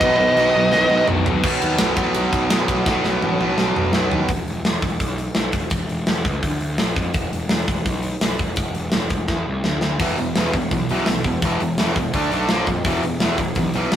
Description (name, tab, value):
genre	heavy metal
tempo	168 BPM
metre	4/4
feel	straight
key	unclear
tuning	A4 = 444 Hz
part	high-gain lead guitar	melody	0.0-1.1 s	D#5	-16 LUFS	right 1 dB	distortion
part	high-gain lead guitar	second line	0.0-1.0 s	B4	-24 LUFS	right 2 dB	distortion
part	distorted electric guitar	riff	0.0-4.3, 10.0-14.0 s	E2 to D4	-24 LUFS	left 4 dB	overdrive
part	distorted electric guitar	riff	0.0-4.3, 10.0-14.0 s	E2 to D4	-24 LUFS	right 5 dB	overdrive
part	sludgy distorted guitar	riff	0.0-1.4 s	B2 to B3	-25 LUFS	left 1 dB	overdrive
part	fuzz picked electric bass	bass	0.0-14.0 s	E1 to B2	-26 LUFS	equal	overdrive
part	tight metal drum kit	drums	0.0-14.0 s	crash cymbal, hi-hat, kick drum, ride cymbal, snare drum, splash cymbal, toms	-21 LUFS	equal	none
room	light reverb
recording	rough rehearsal-room recording, warm saturation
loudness	-18 LUFS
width	side -10 dB against mid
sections	0.0-1.4 A section; 1.4-4.3 B section; 4.3-14.0 C section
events	half time 0.0-1.4; drum fill 0.7-1.4, 2.9-4.3, 9.3-10.0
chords	0.0 B; 1.4 B5; 4.3 E5; 6.4 N.C.; 6.8 A#5; 7.2 E5; 9.7 N.C.; 10.0 E5; 12.1 D5; 12.5 A#5; 12.9 E5